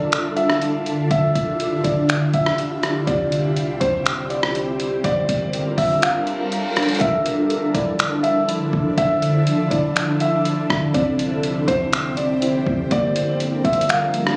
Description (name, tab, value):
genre	hip hop, atmospheric cloud-rap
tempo	122 BPM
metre	4/4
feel	half-time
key	D minor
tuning	A4 = 441 Hz
part	felt-muted upright piano	melody	0.0-14.4 s	C5 to F5	-25 LUFS	equal	tape echo
part	ethereal airy pad	sustained chords	0.0-14.4 s	D3 to Bb4	-25 LUFS	equal	ensemble chorus, built-in reverb, phaser, sidechain pumping
part	soft 808-style bass	bass	0.0-14.4 s	C1 to C2	-33 LUFS	equal	none
part	lo-fi sampler-style drum kit	drums	0.1-14.4 s	finger snaps, hi-hat, kick drum, rim click	-26 LUFS	equal	none
part	reverse cymbal	sound effects	6.2-7.0 s	none	-31 LUFS	equal	none
part	muted felt-like synth keys	arpeggios	7.0-14.4 s	Bb3 to F4	-27 LUFS	equal	chorus, tape echo
room	light reverb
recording	recorded on a phone in the room, club reverb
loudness	-20 LUFS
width	mono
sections	0.0-7.0 A section; 7.0-14.4 B section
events	kick muted 6.0-7.0; reverse cymbal 6.2-7.0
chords	0.0 Dmadd9; 3.1 C; 5.0 Gm7; 7.0 Dmadd9; 10.9 C; 12.9 Gm7